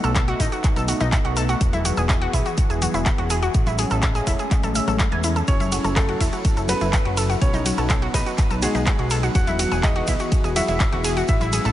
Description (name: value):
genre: progressive house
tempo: 124 BPM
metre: 4/4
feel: straight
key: unclear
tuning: A4 = 440 Hz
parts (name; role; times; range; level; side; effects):
- warm analog pad; sustained chords; 0.0-11.7 s; E3 to A4; -28 LUFS; left 1 dB; chorus, sidechain pumping
- analog pluck; arpeggios; 0.0-11.7 s; D#4 to G#5; -26 LUFS; equal; chorus, sidechain pumping, tape echo
- plucky analog bass; bass; 0.0-11.7 s; E1 to E2; -25 LUFS; equal; sidechain pumping
- house drum kit; drums; 0.0-11.7 s; handclaps, hi-hat, ride cymbal; -28 LUFS; equal; none
- tube shaker; percussion; 0.0-11.7 s; none; -35 LUFS; right 2 dB; none
- electronic kick drum; drums; 0.2-11.4 s; none; -20 LUFS; equal; none
- congas; percussion; 0.8-11.6 s; none; -34 LUFS; left 1 dB; none
- warm baby grand piano; melody; 5.5-11.7 s; G#3 to F#5; -27 LUFS; equal; sidechain pumping, tape echo
room: moderate cathedral reverb, RT60 5.1 s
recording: dreamy mix soaked in reverb, nothing above 10.9 kHz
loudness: -18 LUFS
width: side -13 dB against mid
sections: 0.0-11.7 A section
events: none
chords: 0.0 B7; 1.6 Eadd9; 3.5 Amaj7; 5.5 F#m7; 7.4 B7; 9.4 Eadd9